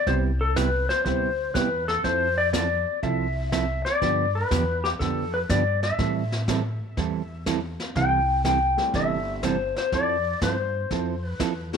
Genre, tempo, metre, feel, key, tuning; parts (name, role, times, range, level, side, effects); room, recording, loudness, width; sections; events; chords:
country, western swing; 122 BPM; 4/4; swing 68% on 8ths; C major; A4 = 440 Hz
clean lap steel guitar; melody; 0.0-11.7 s; G4 to G5; -25 LUFS; left 3 dB
hollow-body jazz guitar; accompaniment; 0.1-11.5 s; C3 to A4; -28 LUFS; right 10 dB
upright bass; bass; 0.1-11.8 s; G1 to A2; -28 LUFS; equal
jazz brush drum kit; drums; 0.1-11.8 s; brushed snare drum, hi-hat, kick drum, snare drum; -32 LUFS; left 1 dB
clear upright piano; accompaniment; 8.8-11.8 s; F#3 to G4; -32 LUFS; left 10 dB
studio reverb; 1960s-style stereo with parts hard left and right; -22 LUFS; side -6 dB against mid
0.0-11.8 A section
0.1 Cmaj7; 2.0 Fmaj7; 4.0 G7; 6.0 Am7; 8.0 C6; 9.9 Fmaj7